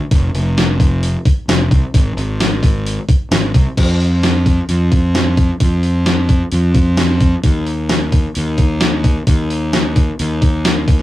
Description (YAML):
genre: rock, shoegaze and dream pop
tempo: 131 BPM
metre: 4/4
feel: straight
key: unclear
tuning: A4 = 440 Hz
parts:
  - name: fuzz fingered electric bass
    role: bass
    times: 0.1-11.0 s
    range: F1 to F2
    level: -16 LUFS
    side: equal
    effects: overdrive
  - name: clean 12-bit digital drum machine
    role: drums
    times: 0.1-11.0 s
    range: crash cymbal, hi-hat, kick drum, snare drum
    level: -14 LUFS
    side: equal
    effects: none
room: moderate small room reverb, RT60 0.5 s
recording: rough rehearsal-room recording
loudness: -12 LUFS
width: side -15 dB against mid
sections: 0.0-3.8 A section; 3.8-11.0 B section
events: none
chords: none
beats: | 0.11 0.56 1.02 1.48 | 1.94 2.40 2.85 3.31 | 3.77 4.23 4.69 5.14 | 5.60 6.06 6.52 6.98 | 7.44 7.90 8.35 8.81 | 9.27 9.73 10.19 10.65